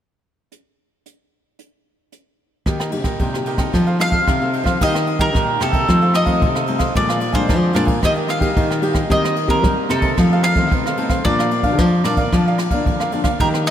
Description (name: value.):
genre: samba and choro.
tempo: 112 BPM.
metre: 4/4.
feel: straight.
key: Eb major.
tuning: A4 = 442 Hz.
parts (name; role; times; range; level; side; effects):
jazz brush drum kit; drums; 0.5-13.7 s; crash cymbal, hi-hat, kick drum, ride cymbal, rim click; -21 LUFS; equal; none.
cavaquinho; accompaniment; 2.7-13.7 s; D4 to Ab5; -25 LUFS; right 2 dB; none.
nylon-string guitar; accompaniment; 2.7-13.7 s; F2 to A4; -23 LUFS; left 3 dB; none.
nylon-string guitar; bass; 2.7-13.7 s; Bb2 to G3; -20 LUFS; equal; none.
bowl-back mandolin; melody; 4.0-13.7 s; A4 to F5; -21 LUFS; equal; none.
room: moderate cathedral reverb, RT60 6.5 s.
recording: in a vast, echoing space.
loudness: -15 LUFS.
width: side -10 dB against mid.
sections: 0.5-2.7 A section; 2.7-4.8 B section; 4.8-13.7 C section.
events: none.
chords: 0.5 N.C.; 2.7 Eb; 3.7 F7; 4.8 Eb; 5.9 F7; 7.0 Bb7; 8.0 Eb; 9.1 Cm7/Eb; 10.2 F7; 11.3 Bb.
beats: | 0.51 1.05 1.59 2.12 | 2.66 3.20 3.74 4.27 | 4.81 5.35 5.88 6.42 | 6.96 7.50 8.03 8.57 | 9.11 9.64 10.18 10.72 | 11.25 11.79 12.33 12.86 | 13.40.